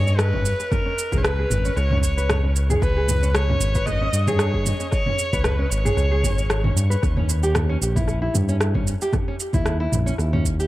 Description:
organic downtempo; 114 BPM; 4/4; swing 54% on 16ths; A4 = 439 Hz
warm kamancheh; melody; 0.0-6.8 s; Bb4 to Eb5; -27 LUFS; equal; tape echo
smooth synth bass; bass; 0.0-10.7 s; Ab1 to G2; -21 LUFS; equal; sidechain pumping
nylon-string guitar; arpeggios; 0.1-10.7 s; Db4 to Cb5; -28 LUFS; right 1 dB; low-pass filter, tape echo
deep house drum kit; drums; 0.1-10.7 s; rim click, shaker, toms; -25 LUFS; equal; overdrive, analog delay
electronic kick drum; drums; 0.3-10.6 s; -24 LUFS; equal; overdrive
light reverb, digital ambience; echo-heavy mix; -19 LUFS; side -16 dB against mid
0.0-10.7 A section
0.0 Db7(no3); 7.0 Eb7b9
0.18 | 0.71 1.24 1.76 2.29 | 2.81 3.34 3.87 4.39 | 4.92 5.45 5.97 6.50 | 7.03 7.55 8.08 8.61 | 9.13 9.66 10.18

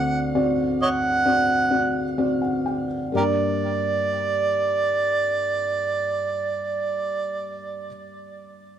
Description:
acoustic folk-pop ballad; 62-69 BPM; 4/4; straight; G harmonic minor; A4 = 440 Hz
mellow harmonica; melody; 0.0-7.7 s; G4 to F#5; -23 LUFS; right 3 dB; plate reverb, tape echo
felt-muted upright piano; accompaniment; 0.0-8.8 s; D2 to G5; -25 LUFS; left 1 dB
moderate studio reverb, RT60 0.6 s; -20 LUFS; side -9 dB against mid
0.0-3.1 A section; 3.1-7.0 B section
slowing down 0.0-3.1
0.0 D7; 3.1 Gm
0.37 1.26 2.18 | 3.14 4.10 5.05 6.00

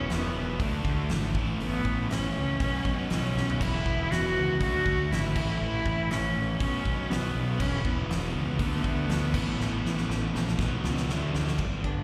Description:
quiet-loud alternative rock; 120 BPM; 4/4; straight; A4 = 440 Hz
rich cello; melody; 0.0-11.1 s; A3 to F#4; -34 LUFS; equal; slapback echo
thick fuzz guitar; riff; 0.0-12.0 s; G2 to F#4; -39 LUFS; equal; distortion, slapback echo
thick fuzz guitar; riff; 0.0-11.6 s; A2 to F#4; -37 LUFS; equal; distortion
fuzz fingered electric bass; bass; 0.0-12.0 s; E1 to D2; -33 LUFS; equal; overdrive
huge arena drum kit; drums; 0.1-12.0 s; crash cymbal, hi-hat, kick drum, snare drum, toms; -35 LUFS; equal
picked steel-string acoustic guitar; arpeggios; 11.8-12.0 s; D3 to D4; -38 LUFS; equal
small room reverb; live gig heard through the venue's PA, recital hall reverb; -28 LUFS; mono
0.0-11.6 A section
drum fill 3.4, 9.6-11.6
0.0 Esus2; 0.6 D; 1.4 A; 2.6 Bsus2; 3.6 Esus2; 4.6 D; 5.4 A; 6.6 Bsus2; 7.6 Esus2; 8.6 D; 9.3 A; 10.6 Bsus2; 11.1 D
0.10 0.60 1.10 | 1.60 2.10 2.60 3.10 | 3.60 4.11 4.60 5.10 | 5.60 6.10 6.60 7.10 | 7.60 8.10 8.60 9.10 | 9.60 10.10 10.60 11.10 | 11.61

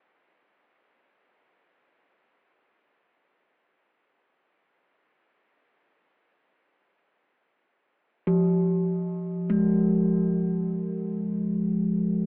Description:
world meditative, free-time meditation music; free time; A4 = 441 Hz
quartz singing bowl; solo; 8.3-12.3 s; F3 to Ab3; -22 LUFS; equal
light reverb, small room ambience; telephone sound; -23 LUFS; side -33 dB against mid
0.0-12.3 A section
free time

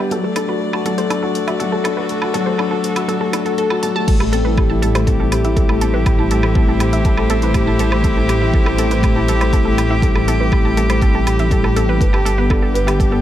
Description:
piano and strings electronica; 121 BPM; 4/4; straight; A dorian; A4 = 440 Hz
dark string quartet; sustained chords; 0.0-13.2 s; F#3 to D5; -23 LUFS; left 1 dB
wide unison pluck; arpeggios; 0.0-13.2 s; A4 to A5; -25 LUFS; right 2 dB; vintage 12-bit sampler grit, sidechain pumping, tape echo
felt-muted upright piano; riff; 0.0-13.2 s; F#3 to B4; -19 LUFS; left 2 dB; tape echo
deep house drum kit; drums; 0.1-13.1 s; crash cymbal, hi-hat, woodblock; -26 LUFS; right 2 dB; studio reverb
dark detuned saw bass; bass; 4.1-13.2 s; A1; -18 LUFS; equal; sidechain pumping
electronic kick drum; drums; 4.1-13.1 s; -17 LUFS; equal; studio reverb
light reverb, digital ambience; -14 LUFS; side -12 dB against mid
0.0-4.1 A section; 4.1-13.2 B section
build-up 0.0-4.1; filter sweep on synth arpeggio sound 0.0-4.1; drop 4.1-13.2
0.1 D/F#; 4.1 Am7; 12.0 G
| 0.11 0.61 1.10 1.60 | 2.10 2.59 3.09 3.58 | 4.08 4.57 5.07 5.57 | 6.06 6.56 7.05 7.55 | 8.04 8.54 9.04 9.53 | 10.03 10.52 11.02 11.52 | 12.01 12.51 13.00

